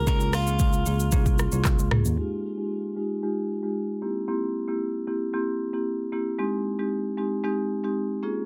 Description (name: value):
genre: afrobeats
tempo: 114 BPM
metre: 4/4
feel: straight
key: F minor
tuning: A4 = 442 Hz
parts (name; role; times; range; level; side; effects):
- direct-recorded clean electric guitar; melody; 0.0-1.9 s; F4 to Bb4; -34 LUFS; equal; delay
- tine electric piano; bass; 0.0-2.2 s; C2 to Eb2; -28 LUFS; equal; none
- marimba with medium mallets; accompaniment; 0.1-8.4 s; Ab3 to Ab4; -30 LUFS; equal; low-pass filter
- afro-pop drum kit; drums; 0.1-2.2 s; handclaps, hi-hat, kick drum, rim click, shaker, toms; -26 LUFS; equal; none
room: little or no reverb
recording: dense, heavily limited modern master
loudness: -26 LUFS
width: mono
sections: 0.0-2.2 A section; 2.2-8.5 B section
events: filter sweep on marimba 2.2-8.5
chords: 0.0 Db6; 2.2 Fm9; 4.0 C7; 6.4 Abmaj7